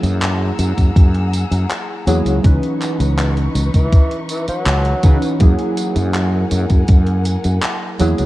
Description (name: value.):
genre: vaporwave.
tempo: 81 BPM.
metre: 4/4.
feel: straight.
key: unclear.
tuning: A4 = 440 Hz.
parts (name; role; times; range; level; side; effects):
warbly lo-fi synth keys; accompaniment; 0.0-8.3 s; E3 to B4; -22 LUFS; right 1 dB; wide subtle chorus, analog delay.
dark studio string section; sustained chords; 0.0-8.3 s; D#4 to E6; -30 LUFS; left 3 dB; none.
fretless electric bass; bass; 0.0-8.3 s; C#2 to C#3; -16 LUFS; equal; none.
gated 80s digital drum machine; drums; 0.0-8.3 s; handclaps, hi-hat, tambourine; -26 LUFS; equal; gated reverb.
electronic kick drum; drums; 0.8-7.0 s; none; -11 LUFS; equal; none.
breathy tenor saxophone; melody; 2.1-8.3 s; E3 to F#3; -26 LUFS; equal; tape echo.
room: little or no reverb.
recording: dark, warm production.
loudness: -13 LUFS.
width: side -17 dB against mid.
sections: 0.0-8.3 A section.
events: none.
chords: 0.0 F#9; 2.4 C#m9; 5.4 F#9.